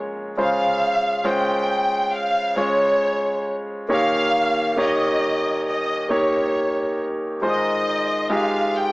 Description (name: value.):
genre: pop.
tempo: 68 BPM.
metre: 4/4.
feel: straight.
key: unclear.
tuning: A4 = 440 Hz.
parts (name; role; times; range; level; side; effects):
clear concert grand piano; accompaniment; 0.0-8.9 s; Eb2 to Db5; -21 LUFS; equal; none.
warm studio violin section; melody; 0.4-8.9 s; Db5 to G5; -22 LUFS; equal; none.
room: moderate spring reverb, RT60 1.1 s, small room ambience.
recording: small speaker sound.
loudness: -19 LUFS.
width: side -22 dB against mid.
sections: 0.0-8.9 A section.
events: none.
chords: 0.4 Dbmaj7; 3.9 Eb7; 7.4 Ab6.